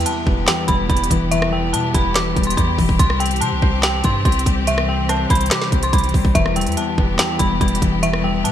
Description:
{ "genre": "hip hop, trap", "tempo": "143 BPM", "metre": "4/4", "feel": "half-time", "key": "E minor", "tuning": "A4 = 440 Hz", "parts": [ { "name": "dark detuned synth bell", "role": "melody", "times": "0.0-8.5 s", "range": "E5 to D6", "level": "-22 LUFS", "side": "equal", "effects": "chorus, ping-pong delay" }, { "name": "concert harp", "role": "accompaniment", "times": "0.0-8.5 s", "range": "E2 to C5", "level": "-22 LUFS", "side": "left 3 dB", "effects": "none" }, { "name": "rich symphonic string section", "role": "sustained chords", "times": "0.0-8.5 s", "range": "E3 to G4", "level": "-26 LUFS", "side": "left 2 dB", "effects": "none" }, { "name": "warm 808-style bass", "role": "bass", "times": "0.0-8.5 s", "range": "E1 to C3", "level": "-22 LUFS", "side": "equal", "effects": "none" }, { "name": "trap drum kit", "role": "drums", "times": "0.0-8.5 s", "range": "handclaps, hi-hat, kick drum, rim click, snare drum", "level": "-19 LUFS", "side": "right 1 dB", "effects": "none" } ], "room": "little or no reverb", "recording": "bright 1980s-style digital production", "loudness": "-15 LUFS", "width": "side -10 dB against mid", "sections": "0.0-8.5 A section", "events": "none", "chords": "0.0 Em; 3.0 C; 6.4 Em" }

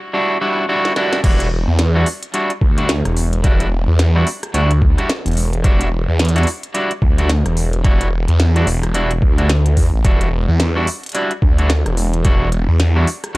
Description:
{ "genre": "glitch hop", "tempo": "109 BPM", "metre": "4/4", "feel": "swing 59% on 16ths", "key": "E minor", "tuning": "A4 = 440 Hz", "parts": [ { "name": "electric guitar at the edge of break-up", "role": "stabs", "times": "0.1-13.4 s", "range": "G3 to F#4", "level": "-21 LUFS", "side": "equal", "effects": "sidechain pumping, tape echo" }, { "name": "glitchy drum kit", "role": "drums", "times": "0.9-13.4 s", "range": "crash cymbal, hi-hat, rim click, snare drum", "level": "-23 LUFS", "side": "equal", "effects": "none" }, { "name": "phased detuned saw bass", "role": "bass", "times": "1.2-13.4 s", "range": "E1 to E2", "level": "-15 LUFS", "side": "equal", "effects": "phaser, tube saturation, high-pass filter" }, { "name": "electronic kick drum", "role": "drums", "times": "1.2-12.4 s", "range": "none", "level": "-14 LUFS", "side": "equal", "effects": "none" } ], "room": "digital ambience", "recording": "dry, gritty hardware recording, vinyl crackle", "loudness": "-14 LUFS", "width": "side -20 dB against mid", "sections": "0.0-1.2 A section; 1.2-13.4 B section", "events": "break 0.0-1.2; build-up 0.0-1.2; drum fill 0.8-1.2; drop 1.2-13.4", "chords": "0.0 Em9" }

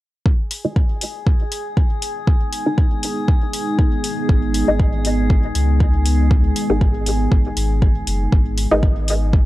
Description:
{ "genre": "dub techno", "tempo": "119 BPM", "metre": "4/4", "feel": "swing 55% on 16ths", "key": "G# minor", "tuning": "A4 = 440 Hz", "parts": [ { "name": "deep dark ambient pad", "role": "sustained chords", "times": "2.5-9.5 s", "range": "G#3 to G#4", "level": "-24 LUFS", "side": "right 1 dB", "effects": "chorus, built-in reverb, sidechain pumping" }, { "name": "electronic kick drum", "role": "drums", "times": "0.3-9.4 s", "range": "none", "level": "-16 LUFS", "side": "equal", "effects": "none" }, { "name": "drifting glass-harmonics texture", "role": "texture", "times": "0.6-8.3 s", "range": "G#4", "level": "-30 LUFS", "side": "left 2 dB", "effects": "chorus, built-in reverb, sidechain pumping" }, { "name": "electronic hi-hat", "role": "drums", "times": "0.5-9.2 s", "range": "none", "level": "-26 LUFS", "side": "left 2 dB", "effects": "none" }, { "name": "filtered dub chord stab", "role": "stabs", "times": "0.6-8.8 s", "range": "D#3 to D#4", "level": "-22 LUFS", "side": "left 1 dB", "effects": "phaser, vintage 12-bit sampler grit, sidechain pumping, dub echo" }, { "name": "pure sine sub bass", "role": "bass", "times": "4.3-9.5 s", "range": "F#1 to C#2", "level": "-19 LUFS", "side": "equal", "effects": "sidechain pumping" } ], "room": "digital ambience", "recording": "dry, gritty hardware recording", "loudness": "-16 LUFS", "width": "side -17 dB against mid", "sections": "0.3-8.3 A section; 8.3-9.5 B section", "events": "filter sweep on synth stab 0.3-8.3", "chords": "0.3 G#m" }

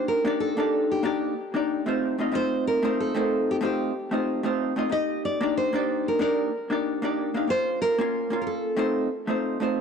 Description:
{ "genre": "chillout", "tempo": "93 BPM", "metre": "4/4", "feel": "swing 58% on 16ths", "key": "Eb lydian", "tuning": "A4 = 438 Hz", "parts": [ { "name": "nylon-string guitar", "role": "melody", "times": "0.0-9.7 s", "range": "G4 to Eb5", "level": "-27 LUFS", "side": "right 1 dB", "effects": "vintage 12-bit sampler grit, analog delay" }, { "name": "vintage hollow-body jazz guitar", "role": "accompaniment", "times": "0.0-9.8 s", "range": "A3 to F5", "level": "-25 LUFS", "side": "left 1 dB", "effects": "auto-pan" } ], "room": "light reverb, studio reverb", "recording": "dry, gritty hardware recording, transformer saturation", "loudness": "-23 LUFS", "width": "side -6 dB against mid", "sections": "0.0-9.8 A section", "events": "none", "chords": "0.0 Ebmaj7; 2.0 F7; 4.9 Ebmaj7; 7.5 Bbm; 8.8 F7" }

